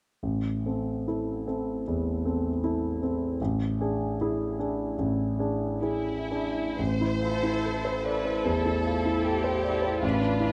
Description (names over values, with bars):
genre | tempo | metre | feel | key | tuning
classical, romantic movement for piano and orchestra | 57-79 BPM | 4/4 | rubato | A minor | A4 = 436 Hz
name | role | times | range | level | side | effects
warm grand piano | melody | 0.2-10.5 s | A1 to D5 | -29 LUFS | equal | none
rich symphonic violin section | second line | 5.8-10.5 s | E4 to C5 | -35 LUFS | equal | none
rich symphonic viola section | accompaniment | 7.2-10.5 s | D4 to B4 | -35 LUFS | equal | none
room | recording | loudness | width
little or no reverb | close, detailed microphones | -28 LUFS | mono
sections
0.2-6.8 A section; 6.8-10.5 B section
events
none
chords
0.2 Am; 3.4 E7/A; 6.8 Am